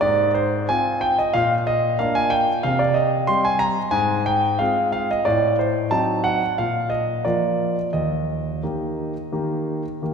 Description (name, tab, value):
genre	classical-period piano sonatina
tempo	91 BPM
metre	4/4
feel	uneven beats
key	Eb major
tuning	A4 = 440 Hz
part	clear concert grand piano	solo	0.0-10.1 s	Eb2 to C6	-19 LUFS	equal	none
room	wet church reverb, RT60 2.9 s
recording	recorded in a church or concert hall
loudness	-19 LUFS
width	side -6 dB against mid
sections	0.0-10.1 A section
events	none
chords	0.0 Fm/Ab; 1.3 Bb; 2.6 C5; 3.9 Fm/Ab; 5.3 Adim7; 6.6 Bb; 7.9 Eb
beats	| 0.01 0.67 1.32 1.98 | 2.64 3.29 3.94 4.60 | 5.26 5.92 6.58 7.26 | 7.94 8.63 9.32 10.01